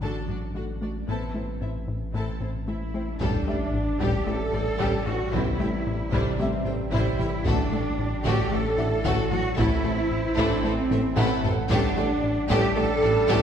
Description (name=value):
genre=cinematic, hybrid orchestral and electronic film score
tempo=113 BPM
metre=4/4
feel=straight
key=unclear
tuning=A4 = 440 Hz
part: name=warm symphonic violin section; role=second line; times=0.0-13.4 s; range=C4 to A5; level=-33 LUFS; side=left 2 dB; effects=none
part: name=warm symphonic viola section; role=accompaniment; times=0.0-13.4 s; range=G3 to F#4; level=-35 LUFS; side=right 3 dB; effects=none
part: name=mellow French horn section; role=sustained chords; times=0.0-13.4 s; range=C3 to A4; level=-32 LUFS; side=equal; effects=none
part: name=thumb-piano-like synth pluck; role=arpeggios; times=0.0-13.4 s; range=C3 to A4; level=-35 LUFS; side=left 2 dB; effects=chorus, ping-pong delay
part: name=tight sequencer bass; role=riff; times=0.0-13.4 s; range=A2 to A3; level=-31 LUFS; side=left 2 dB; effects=none
part: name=saturated sub bass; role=bass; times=0.0-13.4 s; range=A1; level=-33 LUFS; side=equal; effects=none
part: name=warm symphonic cello section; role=bass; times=0.0-13.4 s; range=A2 to A4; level=-31 LUFS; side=right 2 dB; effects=none
part: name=felt-muted upright piano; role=texture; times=0.0-13.4 s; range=B3 to F#5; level=-37 LUFS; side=equal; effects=ping-pong delay
part: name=warm studio double bass section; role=bass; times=1.1-13.4 s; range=A1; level=-32 LUFS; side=right 2 dB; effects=none
part: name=warm symphonic violin section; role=melody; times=3.2-13.4 s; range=A4 to G5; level=-37 LUFS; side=left 3 dB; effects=none
part: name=bright trombone section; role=sustained chords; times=3.2-13.4 s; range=C3 to D4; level=-33 LUFS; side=right 1 dB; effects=none
part: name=clear tuba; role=bass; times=3.2-13.4 s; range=A1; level=-33 LUFS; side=right 2 dB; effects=none
part: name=taiko ensemble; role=drums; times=3.2-13.4 s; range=none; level=-32 LUFS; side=left 1 dB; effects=none
part: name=sub drop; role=sound effects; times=3.2-5.3 s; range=none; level=-34 LUFS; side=equal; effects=none
room=wet scoring stage reverb, RT60 1.9 s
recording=heard from further back in the room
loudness=-23 LUFS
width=side -8 dB against mid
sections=0.0-3.2 A section; 3.2-13.4 B section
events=impact 3.2-5.3; drum fill 10.9-11.7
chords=0.0 D/A; 1.1 Am; 3.2 Gsus2/A; 5.3 C/A; 7.5 D/A; 9.6 Am; 11.7 Gsus2/A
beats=0.02 0.55 | 1.08 1.61 2.15 2.68 | 3.21 3.74 4.27 4.80 | 5.33 5.86 6.39 6.92 | 7.46 7.99 8.52 9.05 | 9.58 10.11 10.64 11.17 | 11.70 12.23 12.77 13.30